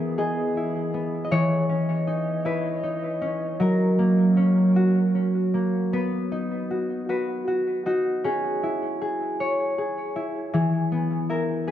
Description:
children's music, lullaby; 52 BPM (dotted quarters); 6/8; straight; B major; A4 = 440 Hz
concert harp; melody; 0.0-11.7 s; E3 to D#5; -22 LUFS; equal; tape echo
warbly tape-like pad; sustained chords; 0.0-5.9 s; E3 to D#5; -31 LUFS; right 1 dB; chorus, built-in reverb
wet recital hall reverb, RT60 1.8 s; dark, warm production; -22 LUFS; side -11 dB against mid
0.0-5.9 A section; 5.9-11.7 B section
0.0 E; 1.3 C#madd9/E; 3.6 F#; 5.9 B; 8.2 C#m; 10.5 E
0.17 | 1.31 2.45 | 3.60 4.76 | 5.93 7.09 | 8.24 9.39 | 10.53 11.67

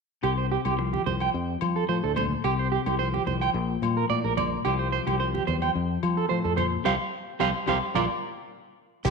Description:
highlife guitar band; 109 BPM; 4/4; straight; A4 = 437 Hz
clean electric guitar; accompaniment; 0.2-9.1 s; F2 to F4; -33 LUFS; left 13 dB
electric guitar at the edge of break-up; arpeggios; 0.2-9.1 s; F4 to G5; -27 LUFS; right 10 dB; tremolo, slapback echo
fingered electric bass; bass; 0.2-9.1 s; Bb1 to F3; -28 LUFS; left 2 dB
agogo bells; percussion; 0.2-9.1 s; -33 LUFS; left 11 dB
congas; percussion; 0.7-8.1 s; -36 LUFS; right 11 dB
damped 70s drum kit; drums; 9.0-9.1 s; crash cymbal, kick drum, snare drum; -27 LUFS; left 2 dB
shekere; percussion; 9.0-9.1 s; -30 LUFS; right 6 dB
moderate echo chamber reverb, RT60 1.7 s, studio ambience; 1960s-style stereo with parts hard left and right; -24 LUFS; side -4 dB against mid
0.2-9.1 A section
band accent 6.9-9.1
0.2 Csus4; 1.3 F; 2.4 Csus4; 3.5 Bb; 4.6 Csus4; 5.8 F; 6.9 Csus4; 8.0 Bb
| 0.23 0.79 1.34 1.89 | 2.44 2.99 3.55 4.10 | 4.65 5.20 5.75 6.30 | 6.85 7.41 7.96 8.51 | 9.05

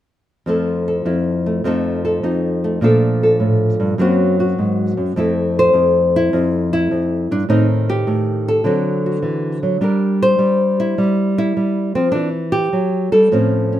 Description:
solo jazz; 103 BPM; 4/4; swing 69% on 8ths; F major; A4 = 440 Hz
nylon-string guitar; solo; 0.5-13.8 s; F2 to C5; -14 LUFS; equal
moderate studio reverb, RT60 0.8 s; minimal, uncompressed stereo recording; -14 LUFS; side -12 dB against mid
0.5-5.1 A section; 5.1-13.8 B section
0.5 Fmaj7; 1.6 F7; 2.8 Bbmaj7; 4.0 Gb; 5.1 Fmaj7; 7.5 Am7b5; 8.6 D7; 9.8 Gm; 12.1 Em
| 0.47 1.05 1.64 2.22 | 2.81 3.39 3.98 4.56 | 5.15 5.73 6.31 6.90 | 7.48 8.06 8.65 9.23 | 9.81 10.39 10.98 11.56 | 12.14 12.72 13.31

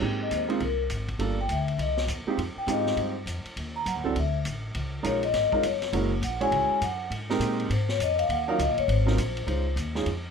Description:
jazz, small-group swing and bop; 203 BPM; 4/4; swing 63% on 8ths; Ab major; A4 = 439 Hz
warm grand piano; accompaniment; 0.0-10.1 s; Gb3 to Db5; -29 LUFS; right 5 dB
upright bass; bass; 0.0-10.3 s; Gb1 to Bb2; -29 LUFS; equal
vibraphone with medium mallets; melody; 0.2-9.7 s; Bb4 to Bb5; -28 LUFS; left 5 dB; plate reverb
vintage drum kit; drums; 0.3-10.1 s; hi-hat, kick drum, ride cymbal, snare drum; -36 LUFS; equal
light reverb; -25 LUFS; side -6 dB against mid
0.0-9.5 A section
vibraphone solo 0.0-10.3
0.0 Abmaj9; 1.2 Gm7; 1.8 C; 2.4 Fm9; 3.6 Ebm7; 4.2 D5; 4.7 Db69; 5.9 Gb9; 7.1 Abmaj9; 8.3 Ebm7; 8.9 Ab13; 9.5 Dbmaj7
| 0.01 0.31 0.61 0.90 | 1.20 1.50 1.79 2.09 | 2.38 2.68 2.97 3.27 | 3.57 3.86 4.16 4.45 | 4.75 5.04 5.34 5.63 | 5.93 6.23 6.52 6.82 | 7.11 7.41 7.70 8.00 | 8.29 8.59 8.88 9.18 | 9.47 9.77 10.06

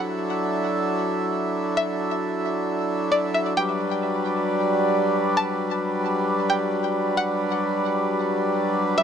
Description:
hip hop; 133 BPM; 4/4; half-time; G major; A4 = 440 Hz
string-like resonator pluck; melody; 0.0-9.0 s; D5 to A5; -26 LUFS; left 1 dB; chorus, low-pass filter, ping-pong delay
hand-pumped harmonium; sustained chords; 0.0-9.0 s; F#3 to E5; -22 LUFS; equal
moderate lush hall reverb, RT60 2.5 s; dark, warm production; -21 LUFS; side -8 dB against mid
0.0-9.0 A section
0.0 Dadd9; 3.6 Gmaj7
0.41 0.86 1.31 | 1.76 2.21 2.67 3.12 | 3.57 4.02 4.47 4.92 | 5.37 5.82 6.28 6.73 | 7.18 7.63 8.08 8.53 | 8.98

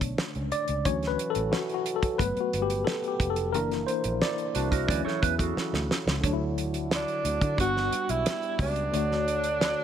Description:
lush 1970s-style soul; 89 BPM; 4/4; straight; D major; A4 = 440 Hz
tine electric piano; accompaniment; 0.0-9.8 s; D3 to D5; -30 LUFS; left 3 dB; overdrive, medium stereo tremolo
vintage muted fingered electric bass; bass; 0.0-9.7 s; F1 to D3; -32 LUFS; equal
damped 70s drum kit; drums; 0.0-9.8 s; hi-hat, kick drum, snare drum; -30 LUFS; right 1 dB
mellow French horn section; sustained chords; 0.9-9.8 s; C#3 to C#5; -37 LUFS; equal; stereo widening
mellow electric guitar; riff; 4.5-6.2 s; D4 to D5; -31 LUFS; right 9 dB; phaser
breathy tenor saxophone; melody; 7.0-9.8 s; D4 to F#4; -28 LUFS; right 2 dB
light reverb, small room ambience; -25 LUFS; side -9 dB against mid
0.0-6.2 A section; 6.2-9.8 B section
tine electric piano solo 0.0-6.2; drum fill 5.6-6.2
0.0 Bm9; 0.9 Dmaj9; 2.2 Gmaj7; 3.5 F#aug7; 4.9 Dmaj9; 7.6 Gmaj7; 8.9 Dmaj7
0.18 | 0.85 1.53 2.20 2.87 | 3.54 4.22 4.89 5.56 | 6.24 6.91 7.58 8.26 | 8.93 9.60

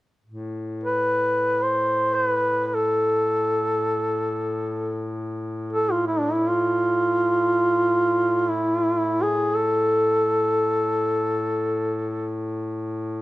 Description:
caucasian folk, Caucasian lament; free time; A minor; A4 = 440 Hz
warm duduk; drone; 0.3-13.2 s; A2; -29 LUFS; left 1 dB
mellow duduk; melody; 0.8-12.3 s; D4 to C5; -20 LUFS; equal
moderate recital hall reverb, RT60 1.5 s; close, detailed microphones; -20 LUFS; side -17 dB against mid
0.3-13.2 A section
free time

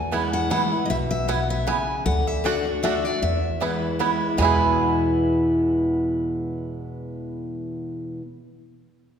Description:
bluegrass; 155 BPM; 3/4; swing 55% on 8ths; E mixolydian; A4 = 440 Hz
picked steel-string acoustic guitar; melody; 0.0-8.2 s; D5 to G#5; -28 LUFS; left 4 dB
picked steel-string acoustic guitar; accompaniment; 0.0-8.2 s; E2 to F#4; -24 LUFS; left 1 dB
upright bass; bass; 0.0-8.2 s; B1 to E2; -28 LUFS; right 1 dB
bluegrass banjo; melody; 0.1-8.2 s; G#3 to G#4; -29 LUFS; right 5 dB
mandolin; stabs; 0.1-8.2 s; A3 to G#5; -28 LUFS; right 7 dB
wet concert hall reverb, RT60 1.7 s; recorded in a church or concert hall; -20 LUFS; side -7 dB against mid
0.0-4.4 A section; 4.4-6.7 B section
0.0 E; 2.1 D; 3.2 E
0.12 0.51 | 0.89 1.28 1.67 | 2.06 2.44 2.83 | 3.22 3.61 3.99 | 4.38 4.77 5.16 | 5.54 5.93 6.32

